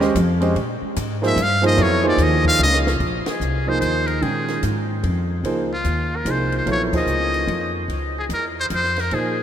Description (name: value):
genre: modal jazz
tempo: 147 BPM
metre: 3/4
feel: swing 65% on 8ths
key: Bb dorian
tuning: A4 = 440 Hz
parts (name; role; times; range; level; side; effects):
- warm grand piano; accompaniment; 0.0-9.4 s; Eb3 to G5; -22 LUFS; right 2 dB; none
- upright bass; bass; 0.0-9.4 s; Bb1 to Bb2; -22 LUFS; left 1 dB; none
- compact cocktail drum kit; drums; 0.0-9.2 s; crash cymbal, hi-hat, kick drum, ride cymbal, snare drum; -32 LUFS; left 1 dB; none
- trumpet with metal mute; melody; 1.3-9.4 s; F4 to F5; -22 LUFS; left 1 dB; none
room: wet cathedral reverb, RT60 6.1 s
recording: in a vast, echoing space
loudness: -18 LUFS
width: side -9 dB against mid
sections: 0.0-3.0 A section; 3.0-9.4 B section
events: muted trumpet solo 0.0-3.0; drum fill 2.6-3.0; band accent 3.2, 6.9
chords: 0.0 Bbm11